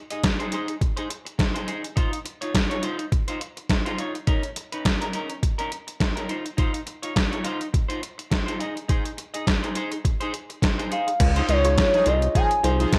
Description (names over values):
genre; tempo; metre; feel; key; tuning
early-eighties boogie funk; 104 BPM; 4/4; swing 56% on 16ths; Db major; A4 = 440 Hz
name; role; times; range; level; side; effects
clean electric guitar; riff; 0.1-13.0 s; Db4 to Eb5; -33 LUFS; equal; subtle chorus
detuned 8-bit digital drum machine; drums; 0.1-13.0 s; crash cymbal, handclaps, hi-hat, kick drum, snare drum; -26 LUFS; equal; gated reverb
gliding portamento lead; melody; 10.9-12.9 s; Db5 to Ab5; -25 LUFS; equal; chorus
rubbery square bass; bass; 11.2-12.9 s; C2 to Db2; -24 LUFS; equal; none
tine electric piano; accompaniment; 11.6-13.0 s; Eb4 to Db5; -30 LUFS; equal; none
analog synth brass; second line; 11.9-12.9 s; F3 to Ab4; -31 LUFS; equal; chorus
room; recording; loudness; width
light reverb, digital ambience; none; -25 LUFS; mono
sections
0.0-11.2 A section; 11.2-13.0 B section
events
none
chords
0.0 Ab/Eb; 2.0 Dbmaj9; 4.3 Cbmaj9 (rootless); 6.3 Dbmaj9; 8.6 Ab6/Eb; 11.2 Dbmaj9